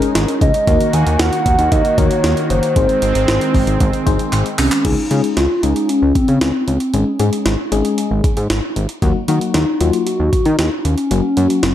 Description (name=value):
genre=synth-pop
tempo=115 BPM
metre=4/4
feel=straight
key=Db major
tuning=A4 = 440 Hz
part: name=FM electric piano with tremolo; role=accompaniment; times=0.0-11.7 s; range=Gb3 to C5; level=-21 LUFS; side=left 6 dB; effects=none
part: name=brassy analog pad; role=sustained chords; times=0.0-4.8 s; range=Eb3 to Gb4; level=-21 LUFS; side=right 1 dB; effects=chorus
part: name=jungle sampler-style drum kit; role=drums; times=0.0-11.7 s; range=crash cymbal, handclaps, hi-hat, kick drum, snare drum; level=-19 LUFS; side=right 1 dB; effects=none
part: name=fat analog bass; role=bass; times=0.2-11.7 s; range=Gb1 to Eb3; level=-17 LUFS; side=equal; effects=none
part: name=hollow clarinet-like synth lead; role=melody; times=0.4-11.7 s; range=C4 to Ab5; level=-18 LUFS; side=equal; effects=chorus, ping-pong delay
room=moderate recital hall reverb, RT60 1.5 s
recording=dark, warm production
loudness=-13 LUFS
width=side -11 dB against mid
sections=0.0-4.8 A section; 4.8-11.7 B section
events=drum fill 4.3-4.8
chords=0.0 Absus4; 0.7 Ebm; 2.8 Ab; 4.8 Dbadd9; 6.9 Absus4; 9.0 Ebm; 11.1 Gb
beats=0.15 | 0.67 1.20 1.72 2.24 | 2.76 3.28 3.81 4.33 | 4.85 5.37 5.89 6.41 | 6.93 7.46 7.98 8.50 | 9.02 9.54 10.07 10.59 | 11.11 11.63